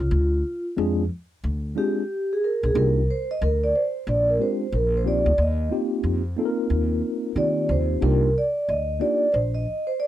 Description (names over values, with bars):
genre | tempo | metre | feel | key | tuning
hip hop | 91 BPM | 4/4 | swing 63% on 16ths | C minor | A4 = 439 Hz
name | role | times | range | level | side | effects
vibraphone with soft mallets | melody | 0.0-10.1 s | F4 to Eb5 | -23 LUFS | right 2 dB | none
upright bass | bass | 0.0-9.6 s | Bb1 to Eb3 | -23 LUFS | equal | none
mellow tine electric piano | accompaniment | 0.8-9.3 s | Ab3 to Bb4 | -25 LUFS | left 1 dB | fast stereo tremolo
room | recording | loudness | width
light reverb | dry, close 1970s-style studio recording | -21 LUFS | side -12 dB against mid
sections
0.0-10.1 A section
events
vibraphone solo 0.0-10.1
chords
0.1 Dm7b5; 2.7 Cm11; 4.7 Bb69; 5.4 Eb6; 8.0 Cm11